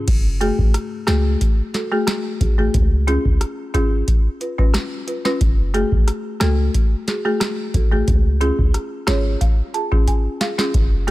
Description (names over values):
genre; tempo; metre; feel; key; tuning
dancehall; 90 BPM; 4/4; straight; F# harmonic minor; A4 = 439 Hz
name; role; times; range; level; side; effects
clean 808-style bass; bass; 0.1-11.1 s; F#1 to C#2; -19 LUFS; equal; none
booming analog drum machine; drums; 0.1-11.1 s; crash cymbal, hi-hat, kick drum, rim click, snare drum; -18 LUFS; equal; none
folk marimba with medium mallets; accompaniment; 0.4-11.1 s; A3 to A5; -22 LUFS; left 1 dB; sidechain pumping
room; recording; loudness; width
little or no reverb; none; -16 LUFS; side -17 dB against mid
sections
0.1-11.1 A section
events
marimba fill 8.7-10.7; drum fill 10.1-10.7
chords
0.1 F#madd9; 2.7 C#; 5.4 F#madd9; 8.1 C#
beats
| 0.08 0.74 1.41 2.08 | 2.74 3.41 4.08 4.74 | 5.41 6.08 6.74 7.41 | 8.08 8.74 9.41 10.08 | 10.74